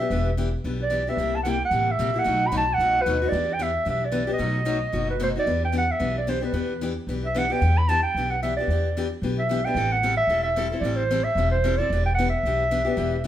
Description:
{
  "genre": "acoustic string swing (jazz manouche)",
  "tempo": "224 BPM",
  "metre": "4/4",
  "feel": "swing 57% on 8ths",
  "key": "E minor",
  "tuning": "A4 = 440 Hz",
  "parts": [
    { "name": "warm clarinet", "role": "melody", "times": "0.0-13.3 s", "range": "B4 to B5", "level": "-24 LUFS", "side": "right 2 dB", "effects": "none" },
    { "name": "picked steel-string acoustic guitar", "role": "accompaniment", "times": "0.0-13.3 s", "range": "B2 to A4", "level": "-28 LUFS", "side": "left 4 dB", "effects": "none" },
    { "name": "upright bass", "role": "bass", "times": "0.1-13.3 s", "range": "E1 to E2", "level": "-26 LUFS", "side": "equal", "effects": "none" }
  ],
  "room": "moderate large studio reverb, RT60 1.0 s",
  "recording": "band playing live in one room",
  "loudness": "-21 LUFS",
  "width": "side -11 dB against mid",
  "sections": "0.0-5.5 A section; 5.5-13.3 A section",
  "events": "none",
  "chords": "0.0 Em7; 1.2 C7; 2.3 B7; 3.3 Em7; 4.4 B7; 5.5 Em7; 9.8 Am7; 11.9 Em7",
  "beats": "| 0.11 0.38 0.65 0.92 | 1.18 1.45 1.72 1.99 | 2.26 2.52 2.79 3.06 | 3.33 3.60 3.86 4.13 | 4.40 4.67 4.93 5.20 | 5.47 5.74 6.01 6.27 | 6.54 6.81 7.08 7.34 | 7.61 7.88 8.15 8.42 | 8.68 8.95 9.22 9.49 | 9.76 10.02 10.29 10.56 | 10.83 11.10 11.36 11.63 | 11.90 12.17 12.43 12.70 | 12.97 13.24"
}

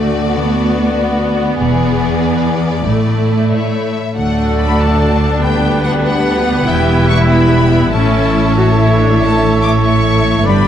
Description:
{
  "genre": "cinematic, heroic adventure film score",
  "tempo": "95 BPM (dotted quarters)",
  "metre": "6/8",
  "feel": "straight",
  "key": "unclear",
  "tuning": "A4 = 441 Hz",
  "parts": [
    { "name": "rich studio violin section", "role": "melody", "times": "0.0-10.7 s", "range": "C#5 to D6", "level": "-22 LUFS", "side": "left 5 dB", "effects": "none" },
    { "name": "warm symphonic violin section", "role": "second line", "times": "0.0-10.7 s", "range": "E4 to E5", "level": "-21 LUFS", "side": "left 2 dB", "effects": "none" },
    { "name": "clear symphonic viola section", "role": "accompaniment", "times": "0.0-10.7 s", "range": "A3 to G4", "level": "-18 LUFS", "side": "right 2 dB", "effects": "none" },
    { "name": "concert harp", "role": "arpeggios", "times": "0.0-10.7 s", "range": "G2 to E5", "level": "-19 LUFS", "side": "left 6 dB", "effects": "none" },
    { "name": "rich symphonic cello section", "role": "bass", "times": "0.0-10.7 s", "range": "D2 to A2", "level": "-17 LUFS", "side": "right 2 dB", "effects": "none" },
    { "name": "warm symphonic double bass section", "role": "bass", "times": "1.6-10.7 s", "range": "E1 to D2", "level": "-17 LUFS", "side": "right 1 dB", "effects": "none" },
    { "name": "warm French horn section", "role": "sustained chords", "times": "4.2-10.7 s", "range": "F#3 to E4", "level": "-20 LUFS", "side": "equal", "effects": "none" },
    { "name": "bright trumpet", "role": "stabs", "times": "4.2-10.7 s", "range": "A4 to D5", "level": "-20 LUFS", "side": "right 2 dB", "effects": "none" }
  ],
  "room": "moderate scoring stage reverb, RT60 1.7 s",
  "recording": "dark, warm production",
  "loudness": "-11 LUFS",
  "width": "side -10 dB against mid",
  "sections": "0.0-4.2 A section; 4.2-10.7 B section",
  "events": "build-up 0.0-4.2",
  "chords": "0.4 Bm/D; 1.6 E7; 2.9 Asus4; 3.5 A; 4.2 D; 5.4 G/D; 6.7 Em; 7.9 A",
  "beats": "| 0.35 0.98 | 1.60 2.23 | 2.86 3.51 | 4.16 4.79 | 5.42 6.05 | 6.67 7.30 | 7.94 8.57 | 9.21 9.84 | 10.47"
}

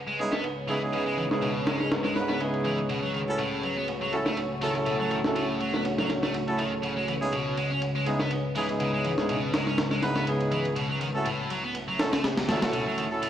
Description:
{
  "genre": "breakbeat, breaks",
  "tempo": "122 BPM",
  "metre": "4/4",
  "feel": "swing 54% on 16ths",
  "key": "C# minor",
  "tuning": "A4 = 440 Hz",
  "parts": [
    { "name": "deep dark ambient pad", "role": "sustained chords", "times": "0.0-13.3 s", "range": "C#3 to E5", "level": "-30 LUFS", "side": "left 1 dB", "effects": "chorus, built-in reverb" },
    { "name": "tight distorted guitar", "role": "riff", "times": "0.1-13.3 s", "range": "A2 to C#4", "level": "-32 LUFS", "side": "equal", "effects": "distortion, overdrive, low-pass filter, tape echo" },
    { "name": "bright horn section", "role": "stabs", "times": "0.2-13.3 s", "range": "C#3 to B4", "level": "-30 LUFS", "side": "right 1 dB", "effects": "vintage 12-bit sampler grit, tape echo" },
    { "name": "breakbeat sampler-style drum kit", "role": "drums", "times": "0.2-13.3 s", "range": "hi-hat, ride cymbal, snare drum", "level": "-32 LUFS", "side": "equal", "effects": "low-pass filter on snare, low-pass filter on cymbals, low-pass filter on kick, low-pass filter on hats, low-pass filter on room" },
    { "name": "shaker", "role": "drums", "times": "0.2-13.3 s", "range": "none", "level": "barely audible", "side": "none", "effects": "none" }
  ],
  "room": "moderate lush hall reverb, RT60 2.5 s",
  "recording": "dark, warm production, vinyl crackle",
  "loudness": "-25 LUFS",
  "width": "side -10 dB against mid",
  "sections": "0.0-13.3 A section",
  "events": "none",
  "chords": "0.0 C#m7; 2.9 B7sus4 (rootless); 6.8 C#m7; 10.8 B7sus4 (rootless)",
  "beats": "0.44 | 0.93 1.42 1.91 2.40 | 2.90 3.39 3.88 4.37 | 4.86 5.36 5.85 6.34 | 6.83 7.32 7.82 8.31 | 8.80 9.29 9.78 10.27 | 10.77 11.26 11.75 12.24 | 12.73 13.22"
}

